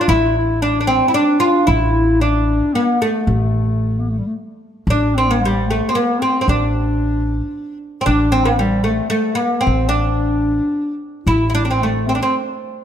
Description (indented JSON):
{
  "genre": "Arabic maqam ensemble",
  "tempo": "113 BPM",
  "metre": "3/4",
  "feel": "straight",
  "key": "A maqam bayati",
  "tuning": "A4 = 440 Hz",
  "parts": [
    { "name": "oud", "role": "melody", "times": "0.0-12.3 s", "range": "G3 to F4", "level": "-18 LUFS", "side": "right 2 dB", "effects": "none" },
    { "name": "dark clarinet", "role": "second line", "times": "0.0-12.3 s", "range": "G3 to F4", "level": "-20 LUFS", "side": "left 3 dB", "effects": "none" },
    { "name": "upright bass", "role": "bass", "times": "0.1-12.2 s", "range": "A1", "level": "-18 LUFS", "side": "equal", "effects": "none" }
  ],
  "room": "moderate recital hall reverb, RT60 1.8 s",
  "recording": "none",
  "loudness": "-15 LUFS",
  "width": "side -9 dB against mid",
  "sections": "0.0-4.9 A section; 4.9-12.8 B section",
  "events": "none",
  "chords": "none"
}